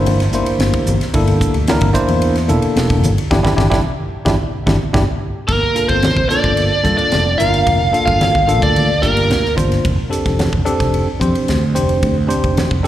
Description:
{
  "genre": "electric jazz fusion",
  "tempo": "110 BPM",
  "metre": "4/4",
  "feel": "straight",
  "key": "G dorian",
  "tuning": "A4 = 440 Hz",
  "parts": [
    { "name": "bell-like tine electric piano", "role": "accompaniment", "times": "0.0-12.9 s", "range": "Bb3 to C5", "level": "-19 LUFS", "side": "equal", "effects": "medium stereo tremolo, slapback echo" },
    { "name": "icy glass pad", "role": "sustained chords", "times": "0.0-5.4 s", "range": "D3 to G4", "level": "-32 LUFS", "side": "right 2 dB", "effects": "chorus, built-in reverb" },
    { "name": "fretless electric bass", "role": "bass", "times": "0.0-12.9 s", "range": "E1 to G2", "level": "-17 LUFS", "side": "equal", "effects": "none" },
    { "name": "crisp fusion drum kit", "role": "drums", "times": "0.1-12.9 s", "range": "hi-hat, kick drum, ride cymbal, snare drum", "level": "-21 LUFS", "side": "equal", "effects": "none" },
    { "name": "congas", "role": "percussion", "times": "0.1-12.7 s", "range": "none", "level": "-23 LUFS", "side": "left 1 dB", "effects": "none" },
    { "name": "biting lead guitar", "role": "melody", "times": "5.5-9.5 s", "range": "Bb4 to F5", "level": "-16 LUFS", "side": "equal", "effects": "overdrive, slapback echo" },
    { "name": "vintage hollow-body jazz guitar", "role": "second line", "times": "5.5-9.5 s", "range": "Bb3 to F4", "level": "-25 LUFS", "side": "right 2 dB", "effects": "slapback echo" }
  ],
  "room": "light reverb",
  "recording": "live gig heard through the venue's PA, recital hall reverb",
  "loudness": "-13 LUFS",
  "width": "side -12 dB against mid",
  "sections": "0.0-5.5 A section; 5.5-12.9 B section",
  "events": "drum fill 3.3-5.5; band accent 3.3-5.5; tine electric piano fill 4.7-5.5",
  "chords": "0.0 Gm69; 5.5 Gm7; 9.8 F69",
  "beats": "0.07 0.61 | 1.15 1.69 2.23 2.77 | 3.32 3.86 4.40 4.95 | 5.49 6.03 6.58 7.12 | 7.67 8.21 8.76 9.30 | 9.85 10.39 10.94 11.48 | 12.03 12.57"
}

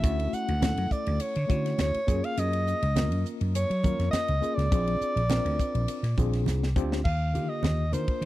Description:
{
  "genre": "electric jazz fusion",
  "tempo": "103 BPM",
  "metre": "4/4",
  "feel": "straight",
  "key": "unclear",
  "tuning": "A4 = 440 Hz",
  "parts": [
    { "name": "mellow soprano saxophone", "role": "melody", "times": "0.0-8.3 s", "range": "C5 to F#5", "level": "-31 LUFS", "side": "equal", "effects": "none" },
    { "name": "tine electric piano", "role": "accompaniment", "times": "0.0-8.3 s", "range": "D3 to A#4", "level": "-33 LUFS", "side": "left 2 dB", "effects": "fast stereo tremolo" },
    { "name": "vintage slap bass", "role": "bass", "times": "0.0-8.3 s", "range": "A#1 to F#3", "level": "-27 LUFS", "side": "equal", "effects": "none" },
    { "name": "crisp fusion drum kit", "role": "drums", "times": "0.0-8.3 s", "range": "crash cymbal, hi-hat, kick drum, ride cymbal, snare drum", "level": "-30 LUFS", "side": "equal", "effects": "none" },
    { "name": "congas", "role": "percussion", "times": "0.0-8.3 s", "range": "none", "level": "-34 LUFS", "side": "right 4 dB", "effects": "none" }
  ],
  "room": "little or no reverb",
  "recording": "dry, close 1970s-style studio recording",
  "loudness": "-24 LUFS",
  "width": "side -16 dB against mid",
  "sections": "0.0-7.0 A section; 7.0-8.3 B section",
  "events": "drum fill 6.5-7.0",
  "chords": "0.0 Dmaj9; 2.1 F#maj9; 4.7 A#9; 7.0 Ebmaj9",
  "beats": "| 0.04 0.62 1.21 1.79 | 2.38 2.96 3.55 4.13 | 4.71 5.30 5.88 6.47 | 7.05 7.63 8.22"
}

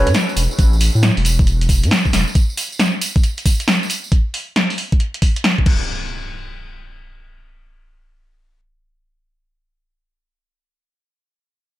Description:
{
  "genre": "UK garage, two-step garage",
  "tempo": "136 BPM",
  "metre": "4/4",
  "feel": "swing 65% on 16ths",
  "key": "A major",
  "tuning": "A4 = 441 Hz",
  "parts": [
    { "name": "saturated sub bass", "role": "bass", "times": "0.0-2.2 s", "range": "E1 to A2", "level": "-16 LUFS", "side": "equal", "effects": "sidechain pumping" },
    { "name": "downlifter and impact", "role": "sound effects", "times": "0.0-2.4, 5.7-9.9 s", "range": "none", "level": "-32 LUFS", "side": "equal", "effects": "none" },
    { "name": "punchy analog drum machine", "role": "drums", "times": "0.1-5.8 s", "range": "crash cymbal, hi-hat, snare drum", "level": "-19 LUFS", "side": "equal", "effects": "none" },
    { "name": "tambourine", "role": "percussion", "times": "0.1-4.1 s", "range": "none", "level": "-27 LUFS", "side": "right 3 dB", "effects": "none" },
    { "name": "electronic kick drum", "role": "drums", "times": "0.6-5.8 s", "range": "none", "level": "-15 LUFS", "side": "equal", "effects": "none" }
  ],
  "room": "digital ambience",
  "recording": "none",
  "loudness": "-14 LUFS",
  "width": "side -15 dB against mid",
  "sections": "0.0-5.9 A section; 5.9-9.4 B section",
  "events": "none",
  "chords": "none",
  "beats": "0.15 | 0.59 1.03 1.47 1.91 | 2.35 2.79 3.23 3.68 | 4.12 4.56 5.00 5.44 | 5.88 6.32 6.76 7.21 | 7.65 8.09 8.53 8.97"
}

